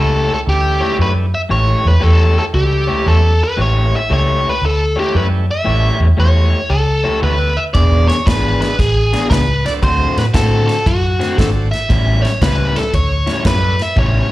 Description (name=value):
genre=electric blues shuffle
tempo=115 BPM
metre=4/4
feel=swing 66% on 8ths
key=A mixolydian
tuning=A4 = 437 Hz
part: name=biting lead guitar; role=melody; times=0.0-14.3 s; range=F#4 to E5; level=-18 LUFS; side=equal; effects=overdrive, slapback echo
part: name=crunchy overdriven guitar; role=riff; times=0.0-14.3 s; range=A2 to C#5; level=-21 LUFS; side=left 3 dB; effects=slapback echo
part: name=vintage muted fingered electric bass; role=bass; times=0.0-14.2 s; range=E1 to A2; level=-14 LUFS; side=equal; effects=none
part: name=bright tonewheel organ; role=accompaniment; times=0.5-13.8 s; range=E3 to E4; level=-26 LUFS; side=right 6 dB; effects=overdrive, slow rotary speaker, slapback echo
part: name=natural country drum kit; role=drums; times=7.7-14.1 s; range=kick drum, ride cymbal, snare drum, toms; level=-18 LUFS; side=equal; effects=none
room=small room reverb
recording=live gig heard through the venue's PA, club ambience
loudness=-12 LUFS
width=side -16 dB against mid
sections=0.0-14.3 A section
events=drum fill 14.0-14.3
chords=0.0 A7; 7.7 E7; 9.8 D7; 11.9 A7